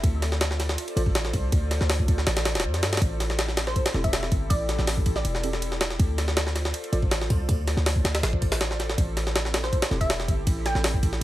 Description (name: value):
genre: drum and bass, jungle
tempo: 161 BPM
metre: 4/4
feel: straight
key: A minor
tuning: A4 = 444 Hz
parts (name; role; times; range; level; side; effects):
- airy breathy pad; sustained chords; 0.0-11.2 s; C4 to D5; -34 LUFS; equal; chorus
- warm 808-style bass; bass; 0.0-11.2 s; D1 to G2; -26 LUFS; equal; none
- jungle sampler-style drum kit; drums; 0.0-11.2 s; hi-hat, kick drum, ride cymbal, snare drum; -25 LUFS; equal; none
- mellow tine electric piano; stabs; 1.0, 3.9-7.0, 9.9-10.0 s; C4 to D5; -36 LUFS; right 2 dB; none
- glassy wavetable pluck; melody; 3.7-5.5, 9.6-10.9 s; C5 to G5; -33 LUFS; equal; chorus, cassette tape, dub echo
room: little or no reverb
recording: none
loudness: -22 LUFS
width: side -15 dB against mid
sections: 0.0-11.2 A section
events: none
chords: 0.0 Dm7; 3.0 Am7; 6.0 Dm7; 9.0 Am7